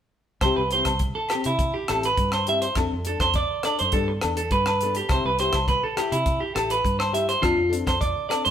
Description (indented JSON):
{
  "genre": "highlife guitar band",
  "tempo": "103 BPM",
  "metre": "4/4",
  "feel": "straight",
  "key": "C major",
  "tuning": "A4 = 442 Hz",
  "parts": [
    { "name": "nylon-string guitar", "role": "accompaniment", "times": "0.4-8.5 s", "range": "F3 to A4", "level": "-29 LUFS", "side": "left 5 dB", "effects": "none" },
    { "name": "clean electric guitar", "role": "arpeggios", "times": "0.4-8.5 s", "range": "E4 to E5", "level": "-23 LUFS", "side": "right 2 dB", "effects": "none" },
    { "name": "fingered electric bass", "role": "bass", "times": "0.4-8.5 s", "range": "A1 to C3", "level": "-30 LUFS", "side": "equal", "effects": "none" },
    { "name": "tight funk drum kit", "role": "drums", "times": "0.4-8.5 s", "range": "hi-hat, kick drum, rim click", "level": "-28 LUFS", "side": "equal", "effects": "none" },
    { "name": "agogo bells", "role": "percussion", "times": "0.4-8.5 s", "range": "none", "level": "-32 LUFS", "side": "left 3 dB", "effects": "none" }
  ],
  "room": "moderate stone room reverb, RT60 1.2 s",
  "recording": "band playing live in one room",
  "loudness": "-21 LUFS",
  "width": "side -9 dB against mid",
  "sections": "0.4-8.5 A section",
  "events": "none",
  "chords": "0.4 C; 2.8 F6; 3.9 Gadd9; 5.1 C; 7.4 F6"
}